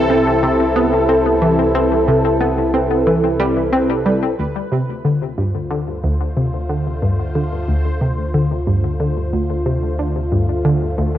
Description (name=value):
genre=ambient, sequencer-driven space music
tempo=91 BPM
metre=4/4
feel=straight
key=D minor from 4.4 s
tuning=A4 = 443 Hz
part: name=sweeping resonant pad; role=sustained chords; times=0.0-11.2 s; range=C3 to D5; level=-18 LUFS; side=equal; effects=chorus, cassette tape
part: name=warm sub bass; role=bass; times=0.0-11.2 s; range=C2 to D2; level=-24 LUFS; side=equal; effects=none
part: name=pulsing gated texture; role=texture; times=0.0-4.4 s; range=B4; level=-25 LUFS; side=right 4 dB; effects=chorus, built-in reverb, cassette tape
part: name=analog pluck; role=riff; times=0.1-11.2 s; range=D2 to C4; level=-19 LUFS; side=equal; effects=chorus, cassette tape, ping-pong delay
room=wet spring reverb, RT60 1.5 s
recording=home recording on cassette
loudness=-15 LUFS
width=side -12 dB against mid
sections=0.0-4.4 A section; 4.4-11.2 B section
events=fade-in on analog synth pad 4.4-11.2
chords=0.0 Cmaj7; 4.4 Dm7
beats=0.43 1.09 | 1.75 2.41 3.07 3.73 | 4.38 5.04 5.70 6.36 | 7.02 7.68 8.34 9.00 | 9.66 10.32 10.98